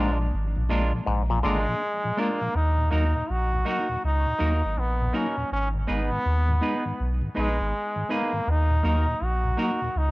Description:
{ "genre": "reggae", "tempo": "81 BPM", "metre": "4/4", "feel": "swing 64% on 16ths", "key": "Eb minor", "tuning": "A4 = 440 Hz", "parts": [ { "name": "brilliant trombone", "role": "melody", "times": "0.0-10.1 s", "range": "Ab3 to Gb4", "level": "-28 LUFS", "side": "equal", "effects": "cassette tape, dub echo" }, { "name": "mellow tonewheel organ", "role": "accompaniment", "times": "0.0-9.9 s", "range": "Eb2 to Eb4", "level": "-32 LUFS", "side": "left 1 dB", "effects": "slow rotary speaker, cassette tape, dub echo" }, { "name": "semi-hollow electric guitar", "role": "accompaniment", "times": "0.0-9.8 s", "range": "Ab3 to Cb5", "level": "-32 LUFS", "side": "right 2 dB", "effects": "spring reverb, cassette tape, dub echo" }, { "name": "auto-wah clav", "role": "arpeggios", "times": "0.0-1.6 s", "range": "Ab2 to D3", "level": "-28 LUFS", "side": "left 4 dB", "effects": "overdrive, cassette tape" }, { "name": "warm sub bass", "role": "bass", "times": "0.0-10.1 s", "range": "Ab1 to Eb2", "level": "-24 LUFS", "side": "equal", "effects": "transformer saturation" } ], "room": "light reverb", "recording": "home recording on cassette", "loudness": "-22 LUFS", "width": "side -21 dB against mid", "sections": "0.0-2.5 A section; 2.5-10.1 B section", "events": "none", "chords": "0.0 Bb7; 2.5 Ebm; 5.5 Abm; 8.5 Ebm" }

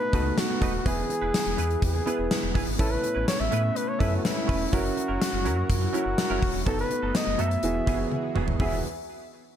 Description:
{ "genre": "1980s-style pop", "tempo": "124 BPM", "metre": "4/4", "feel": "straight", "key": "E major", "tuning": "A4 = 440 Hz", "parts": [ { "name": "warm flugelhorn", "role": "melody", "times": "0.0-8.8 s", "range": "E4 to E5", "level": "-30 LUFS", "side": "equal", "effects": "tape echo" }, { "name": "warm baby grand piano", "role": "accompaniment", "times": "0.0-8.8 s", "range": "E2 to B4", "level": "-32 LUFS", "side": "right 1 dB", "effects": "none" }, { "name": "chorused pulse-width pad", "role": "sustained chords", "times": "0.0-8.8 s", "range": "E3 to B4", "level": "-34 LUFS", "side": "left 1 dB", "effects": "none" }, { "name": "direct-recorded clean electric guitar", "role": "riff", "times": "0.0-8.7 s", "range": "F#3 to B4", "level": "-37 LUFS", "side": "right 8 dB", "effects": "ensemble chorus" }, { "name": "sub bass with octave", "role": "bass", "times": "0.1-8.8 s", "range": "D#1 to A2", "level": "-30 LUFS", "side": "equal", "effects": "none" }, { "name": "gated 80s drum kit", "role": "drums", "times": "0.1-8.7 s", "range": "hi-hat, kick drum, snare drum, tambourine, toms", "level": "-27 LUFS", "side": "equal", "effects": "none" } ], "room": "light reverb, small room ambience", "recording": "dark, warm production", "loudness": "-23 LUFS", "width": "side -10 dB against mid", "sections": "0.0-8.6 A section", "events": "drum fill 8.1-8.6", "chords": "0.0 B7; 0.9 E; 2.8 Aadd9; 4.7 F#7; 6.7 B7/F#; 7.6 Eadd9" }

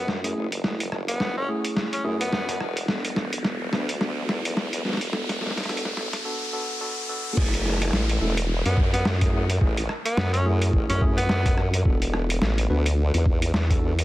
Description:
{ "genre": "glitch hop", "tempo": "107 BPM", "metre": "4/4", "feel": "swing 58% on 16ths", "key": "F# minor", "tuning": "A4 = 439 Hz", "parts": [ { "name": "raspy tenor saxophone", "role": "melody", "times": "0.0-2.6, 8.7-11.6 s", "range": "B3 to C#4", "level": "-31 LUFS", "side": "equal", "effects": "ping-pong delay" }, { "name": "formant-sweep wobble bass", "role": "bass", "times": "0.0-14.0 s", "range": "E1 to F#2", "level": "-25 LUFS", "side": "equal", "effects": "chorus, tube saturation, high-pass filter" }, { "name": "riser and downlifter", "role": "sound effects", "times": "0.8-11.9 s", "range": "none", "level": "-34 LUFS", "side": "equal", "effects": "none" }, { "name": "boom bap sampler-style drum kit", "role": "drums", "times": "0.1-14.0 s", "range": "crash cymbal, hi-hat, rim click, snare drum", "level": "-28 LUFS", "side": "equal", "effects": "none" }, { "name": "tine electric piano", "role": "stabs", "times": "0.2-13.9 s", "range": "A3 to B4", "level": "-31 LUFS", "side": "equal", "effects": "medium tremolo, sidechain pumping, ping-pong delay" }, { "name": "electronic kick drum", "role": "drums", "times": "7.4-13.8 s", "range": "none", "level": "-23 LUFS", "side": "equal", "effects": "none" } ], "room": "light reverb, digital ambience", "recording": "dense, heavily limited modern master, vinyl crackle, high-pass filter", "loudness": "-22 LUFS", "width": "side -16 dB against mid", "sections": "0.0-7.4 A section; 7.4-14.0 B section", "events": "build-up 0.0-7.4; drum fill 0.0-6.2; filter sweep 0.0-7.4; riser 0.8-7.4; drop 7.4-14.0", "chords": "0.0 F#m7; 2.9 E9sus4; 7.4 F#m7; 11.9 E9sus4" }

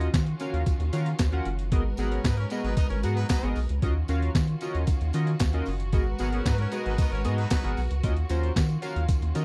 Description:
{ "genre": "early-eighties boogie funk", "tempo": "114 BPM", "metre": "4/4", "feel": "straight", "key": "G# minor", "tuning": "A4 = 440 Hz", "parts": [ { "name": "chorused polysynth", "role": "accompaniment", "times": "0.0-9.4 s", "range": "B3 to F#5", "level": "-34 LUFS", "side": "equal", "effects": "none" }, { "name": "warm studio string section", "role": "sustained chords", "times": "0.0-9.4 s", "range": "D#3 to B4", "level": "-40 LUFS", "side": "equal", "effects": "none" }, { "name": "rubbery square bass", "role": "bass", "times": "0.0-9.4 s", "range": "F#1 to D#3", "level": "-29 LUFS", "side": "equal", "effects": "none" }, { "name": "boom bap sampler-style drum kit", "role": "drums", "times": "0.0-9.4 s", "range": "handclaps, hi-hat, kick drum, snare drum", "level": "-28 LUFS", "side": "equal", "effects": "none" }, { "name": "tambourine", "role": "percussion", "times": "0.1-9.4 s", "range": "none", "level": "-49 LUFS", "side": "equal", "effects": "none" }, { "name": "warm horn section", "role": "second line", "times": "2.0-7.7 s", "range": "F#3 to D#5", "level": "-38 LUFS", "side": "equal", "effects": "none" } ], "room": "little or no reverb", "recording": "dry, close 1970s-style studio recording", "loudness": "-27 LUFS", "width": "mono", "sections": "0.0-9.4 A section", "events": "none", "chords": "0.0 D#m9; 1.7 G#m9; 3.8 D#m9; 5.9 G#m9; 8.0 D#m9" }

